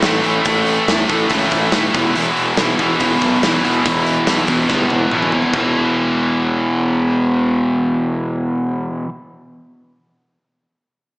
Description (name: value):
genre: hard rock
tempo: 142 BPM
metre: 4/4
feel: straight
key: unclear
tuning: A4 = 441 Hz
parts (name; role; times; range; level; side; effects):
- biting overdriven guitar; riff; 0.0-9.1 s; E2 to A3; -15 LUFS; equal; none
- growling FM bass; bass; 0.0-8.9 s; D#1 to E2; -24 LUFS; equal; none
- gated 80s drum kit; drums; 0.0-5.6 s; hi-hat, kick drum, snare drum, toms; -21 LUFS; equal; none
room: moderate scoring stage reverb, RT60 1.8 s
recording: small speaker sound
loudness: -14 LUFS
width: side -29 dB against mid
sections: 0.0-5.5 A section; 5.5-8.9 B section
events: drum fill 4.7-5.5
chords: 0.0 A5; 1.9 E5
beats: 0.04 | 0.47 0.89 1.31 1.73 | 2.16 2.58 3.00 3.42 | 3.85 4.27 4.70 5.12 | 5.54 5.97 6.39 6.82 | 7.24 7.67 8.09 8.52